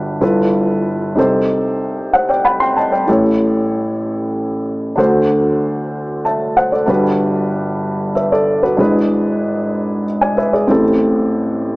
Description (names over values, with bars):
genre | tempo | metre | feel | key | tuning
gospel | 63 BPM (dotted quarters) | 6/8 | straight | G major | A4 = 440 Hz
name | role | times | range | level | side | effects
dark upright piano | solo | 0.0-11.8 s | G1 to C6 | -13 LUFS | equal | none
room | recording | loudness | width
light reverb | small speaker sound | -13 LUFS | side -23 dB against mid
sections
0.0-11.8 A section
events
none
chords
0.2 G13; 1.2 Cm6; 3.1 A7; 5.0 D7; 6.9 Gmaj7; 8.8 E7/G#; 10.7 Am7